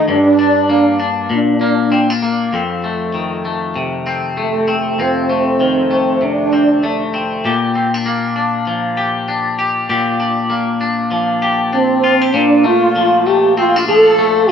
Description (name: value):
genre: indie pop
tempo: 98 BPM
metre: 4/4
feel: swing 60% on 16ths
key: Bb major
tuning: A4 = 440 Hz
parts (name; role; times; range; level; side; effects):
- warm French horn; melody; 0.0-7.1, 11.7-14.5 s; A3 to A4; -12 LUFS; right 1 dB; ensemble chorus
- twangy electric guitar; accompaniment; 0.0-14.5 s; F2 to G4; -16 LUFS; left 3 dB; lush chorus, vibrato effect
room: moderate spring reverb, RT60 1.5 s, small room ambience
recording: none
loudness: -12 LUFS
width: side -7 dB against mid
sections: 0.0-2.5 A section; 2.5-12.3 B section; 12.3-14.5 A section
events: none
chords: 0.1 Gm; 1.3 Bb; 2.5 F7; 7.4 Bb6; 12.3 Bbmaj7